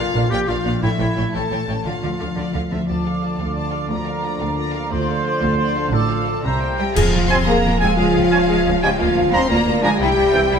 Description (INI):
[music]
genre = cinematic, heroic adventure film score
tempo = 118 BPM (dotted quarters)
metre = 6/8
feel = straight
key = D minor, F minor from 7.0 s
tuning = A4 = 443 Hz
[part]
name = warm symphonic violin section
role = melody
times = 0.0-10.6 s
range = D5 to C6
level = -28 LUFS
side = left 4 dB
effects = none
[part]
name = warm clarinet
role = second line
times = 0.0-6.8 s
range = E4 to A4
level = -28 LUFS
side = left 2 dB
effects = none
[part]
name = warm symphonic violin section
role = second line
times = 0.0-10.6 s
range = C5 to C6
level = -30 LUFS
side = left 2 dB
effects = none
[part]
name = rich symphonic viola section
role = accompaniment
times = 0.0-10.6 s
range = E3 to C5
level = -28 LUFS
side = equal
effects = none
[part]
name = concert harp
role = arpeggios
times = 0.0-10.6 s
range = A2 to F6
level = -27 LUFS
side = left 3 dB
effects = none
[part]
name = clear symphonic double bass section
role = bass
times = 0.0-10.6 s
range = A1 to F2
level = -25 LUFS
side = right 3 dB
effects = none
[part]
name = rich symphonic cello section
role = bass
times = 0.0-10.6 s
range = D2 to C4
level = -25 LUFS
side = right 2 dB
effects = none
[part]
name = mellow French horn section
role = sustained chords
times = 0.1-10.6 s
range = F3 to C5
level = -23 LUFS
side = left 1 dB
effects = none
[part]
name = mellow large flute ensemble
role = second line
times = 2.9-10.6 s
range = Db5 to D6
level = -26 LUFS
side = right 2 dB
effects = none
[part]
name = warm trombone section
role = sustained chords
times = 2.9-10.4 s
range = C3 to D4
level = -28 LUFS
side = right 2 dB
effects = none
[part]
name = clear trumpet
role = stabs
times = 2.9-10.4 s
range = A4 to Bb5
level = -25 LUFS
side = right 2 dB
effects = none
[part]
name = cymbal swell, clash cymbals and concert bass drum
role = percussion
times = 4.9-7.6 s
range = none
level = -24 LUFS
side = equal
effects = none
[sound]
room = wet scoring stage reverb, RT60 2.0 s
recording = none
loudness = -16 LUFS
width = side -7 dB against mid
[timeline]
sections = 0.0-2.9 A section; 2.9-7.0 B section; 7.0-10.6 C section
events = band accent 7.0-7.3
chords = 0.0 Bb; 0.8 A7; 1.9 Dm; 3.9 Bb/D; 4.9 Dm7; 5.9 Dm/A; 6.4 C7; 7.0 Fm; 8.0 Db; 9.0 Bb/D; 10.0 C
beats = 0.32 | 0.83 1.34 | 1.85 2.37 | 2.89 3.40 | 3.90 4.41 | 4.92 5.42 | 5.93 6.45 | 6.96 7.47 | 7.98 8.49 | 8.99 9.50 | 10.00 10.51